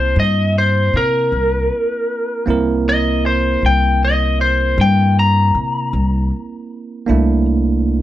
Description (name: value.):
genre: slow blues.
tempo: 52 BPM (dotted quarters).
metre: 12/8.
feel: straight.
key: C mixolydian.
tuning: A4 = 441 Hz.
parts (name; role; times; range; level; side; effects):
lightly driven lead guitar; melody; 0.0-7.5 s; Bb4 to Bb5; -17 LUFS; left 2 dB; none.
barky tine electric piano; accompaniment; 0.0-8.0 s; A3 to A5; -21 LUFS; right 5 dB; plate reverb.
upright bass; bass; 0.0-8.0 s; C2 to C3; -16 LUFS; equal; none.
room: light reverb.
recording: none.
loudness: -14 LUFS.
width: side -13 dB against mid.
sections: 0.0-8.0 A section.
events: none.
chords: 0.0 C13.